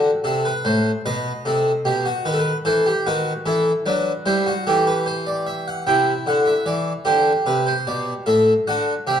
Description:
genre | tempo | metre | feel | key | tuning
classical, baroque-style 3-part fugue for harpsichord | 50 BPM (dotted quarters) | 12/8 | straight | unclear | A4 = 440 Hz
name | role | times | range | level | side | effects
harpsichord | solo | 0.0-9.2 s | A2 to G5 | -18 LUFS | equal | none
room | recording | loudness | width
wet recital hall reverb, RT60 1.5 s | dark, warm production | -18 LUFS | side -8 dB against mid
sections
0.0-5.9 A section; 5.9-9.2 B section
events
none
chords
0.0 F#m7b5; 1.1 B7; 3.5 Em; 5.9 C; 8.3 F#m7b5/A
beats
| 1.05 2.25 3.45 4.66 | 5.87 7.07 8.28

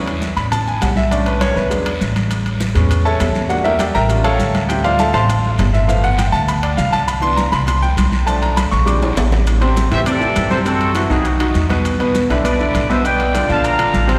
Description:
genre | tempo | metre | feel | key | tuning
latin, salsa | 201 BPM | 4/4 | straight | A minor | A4 = 439 Hz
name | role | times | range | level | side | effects
bright grand piano | accompaniment | 0.0-14.2 s | B2 to D6 | -20 LUFS | equal | none
congas | percussion | 0.1-14.2 s | none | -27 LUFS | equal | none
maracas | percussion | 0.1-14.2 s | none | -38 LUFS | equal | none
timbales | percussion | 0.1-14.2 s | none | -30 LUFS | equal | none
guiro | percussion | 0.2-14.2 s | none | -34 LUFS | equal | none
upright bass | bass | 0.4-14.2 s | G1 to A2 | -20 LUFS | equal | none
bright trumpet section | melody | 9.9-14.1 s | D#4 to Bb5 | -23 LUFS | equal | none
room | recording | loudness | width
wet church reverb, RT60 3.8 s | recorded in a church or concert hall | -16 LUFS | mono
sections
0.0-9.5 A section; 9.5-14.2 B section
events
grand piano solo 0.0-9.5; drum fill 8.9-9.5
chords
0.0 Amaj7sus2; 1.1 Bm9; 1.7 E9; 2.3 Amaj9; 3.5 Em7b5; 4.1 Aaug7; 4.7 Dm9; 5.9 G13; 7.1 Cmaj9; 8.3 Bm7b5; 8.9 Bb13; 9.5 Am7; 10.7 F#m7b5; 11.3 B; 11.9 E7(no3); 13.0 Bdim; 13.6 Bbadd9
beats
0.22 0.52 0.81 | 1.11 1.41 1.71 2.01 | 2.31 2.61 2.90 3.20 | 3.50 3.80 4.10 4.40 | 4.70 4.99 5.29 5.59 | 5.89 6.19 6.49 6.79 | 7.08 7.38 7.68 7.98 | 8.28 8.57 8.87 9.17 | 9.47 9.77 10.06 10.36 | 10.66 10.96 11.26 11.56 | 11.85 12.15 12.45 12.75 | 13.05 13.35 13.64 13.94

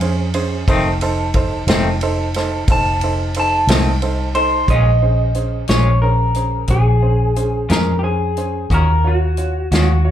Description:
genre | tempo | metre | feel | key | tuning
slow blues | 60 BPM (dotted quarters) | 12/8 | straight | Bb minor | A4 = 441 Hz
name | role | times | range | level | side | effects
clear upright piano | accompaniment | 0.0-10.1 s | Db4 to Db5 | -23 LUFS | right 4 dB | slapback echo
vintage muted fingered electric bass | bass | 0.0-10.1 s | F1 to F2 | -17 LUFS | equal | none
natural country drum kit | drums | 0.0-9.9 s | hi-hat, kick drum, ride cymbal, snare drum | -21 LUFS | equal | none
semi-hollow electric guitar | accompaniment | 0.7-9.9 s | F2 to Gb4 | -22 LUFS | left 4 dB | tremolo, slapback echo
electric guitar through a small old amp | melody | 2.7-10.1 s | Gb4 to A5 | -19 LUFS | left 1 dB | slapback echo
room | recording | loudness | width
little or no reverb | live gig heard through the venue's PA, club reverb | -14 LUFS | side -11 dB against mid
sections
0.0-4.7 A section; 4.7-10.1 B section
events
clean electric guitar solo 0.0-4.7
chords
0.0 Bbm7 (rootless); 0.7 F7; 4.7 Bbm7; 8.7 Ebm7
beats
| 0.68 1.68 2.68 3.68 | 4.69 5.69 6.70 7.70 | 8.71 9.71

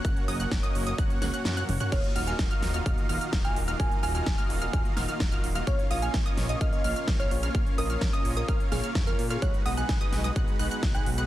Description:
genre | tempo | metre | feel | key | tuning
EDM, festival progressive house | 128 BPM | 4/4 | straight | unclear | A4 = 440 Hz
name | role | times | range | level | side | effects
lush unison pad | sustained chords | 0.0-11.3 s | D#3 to A#4 | -39 LUFS | equal | chorus, sidechain pumping
wide unison pluck | arpeggios | 0.0-11.3 s | D#6 to F#6 | -36 LUFS | equal | sidechain pumping, digital delay
dense compressed supersaw | riff | 0.0-11.3 s | G#3 to F#5 | -34 LUFS | right 1 dB | sidechain pumping, digital delay
fat analog bass | bass | 0.0-11.2 s | D#1 to A#2 | -32 LUFS | equal | sidechain pumping
big-room dance drum kit | drums | 0.0-11.3 s | crash cymbal, hi-hat, snare drum, toms | -35 LUFS | equal | small room reverb
electronic kick drum | drums | 0.0-10.9 s | none | -28 LUFS | equal | small room reverb
bell-like FM electric piano | melody | 1.9-11.1 s | G#4 to G#5 | -35 LUFS | right 2 dB | chorus, tremolo, digital delay
room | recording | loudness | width
digital ambience | dense, heavily limited modern master | -25 LUFS | side -14 dB against mid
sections
0.0-11.3 A section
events
kick drops out 1.5-1.9; drum fill 1.6-1.9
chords
0.0 F#; 1.9 D#madd9; 5.7 A#m; 9.4 B6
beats
| 0.05 0.52 0.98 1.45 | 1.92 2.39 2.86 3.33 | 3.80 4.27 4.74 5.20 | 5.67 6.14 6.61 7.08 | 7.55 8.02 8.48 8.95 | 9.42 9.89 10.36 10.83

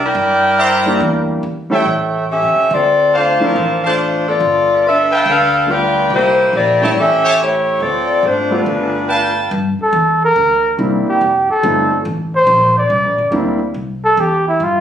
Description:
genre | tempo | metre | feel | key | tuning
jazz | 141 BPM | 4/4 | swing 67% on 8ths | C mixolydian | A4 = 435 Hz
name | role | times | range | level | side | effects
mellow saxophone section | melody | 0.0-9.3 s | F3 to G5 | -13 LUFS | left 1 dB | none
upright bass | bass | 0.0-14.8 s | F1 to G2 | -23 LUFS | equal | none
warm trumpet section | stabs | 0.6-9.5 s | A4 to Bb5 | -16 LUFS | right 1 dB | none
warm concert grand piano | accompaniment | 0.9-13.6 s | E3 to G4 | -18 LUFS | equal | none
trumpet with bucket mute | melody | 9.8-14.8 s | E4 to D5 | -12 LUFS | right 1 dB | none
room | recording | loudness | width
moderate club reverb, RT60 0.6 s | recorded on a phone in the room, studio reverb | -12 LUFS | side -9 dB against mid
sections
0.0-9.5 A section; 9.5-14.8 B section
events
muted trumpet solo 9.5-14.8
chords
0.0 C9; 1.0 Em7b5; 1.9 A7; 2.7 Dm7; 4.4 G9; 6.1 C9; 7.0 A7; 7.8 Dm7; 8.7 G9; 9.5 C9; 11.2 F9; 12.9 C9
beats
0.15 0.58 | 1.00 1.43 1.85 2.28 | 2.71 3.13 3.56 3.98 | 4.41 4.83 5.26 5.68 | 6.11 6.53 6.96 7.38 | 7.81 8.23 8.66 9.08 | 9.51 9.93 10.36 10.78 | 11.21 11.63 12.06 12.48 | 12.90 13.33 13.75 14.18 | 14.60

